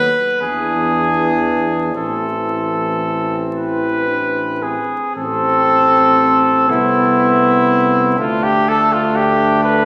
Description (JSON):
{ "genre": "classical, hymn-like piece for brass band", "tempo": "36-43 BPM (dotted quarters)", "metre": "6/8", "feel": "rubato", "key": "A minor", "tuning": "A4 = 440 Hz", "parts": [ { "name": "clear cornet", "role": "melody", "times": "0.0-9.8 s", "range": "E4 to B4", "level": "-18 LUFS", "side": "equal", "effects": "none" }, { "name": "mellow flugelhorn", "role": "second line", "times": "0.0-9.8 s", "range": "B3 to D4", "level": "-26 LUFS", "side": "equal", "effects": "none" }, { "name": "mellow euphonium", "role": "accompaniment", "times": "0.0-9.8 s", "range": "A3 to E4", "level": "-29 LUFS", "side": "equal", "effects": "none" }, { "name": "warm euphonium", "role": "accompaniment", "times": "0.0-9.8 s", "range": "E3 to C4", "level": "-22 LUFS", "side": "equal", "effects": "none" }, { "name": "mellow tuba", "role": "bass", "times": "0.0-9.8 s", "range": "A1 to E2", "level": "-27 LUFS", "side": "equal", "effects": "none" } ], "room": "wet scoring stage reverb, RT60 1.8 s", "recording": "vinyl crackle", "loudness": "-16 LUFS", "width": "mono", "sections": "0.0-5.2 A section; 5.2-9.8 B section", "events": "none", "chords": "0.4 E7; 1.9 Am; 8.2 D5", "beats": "0.41 | 1.95 3.53 | 5.15 6.69 | 8.19 9.65" }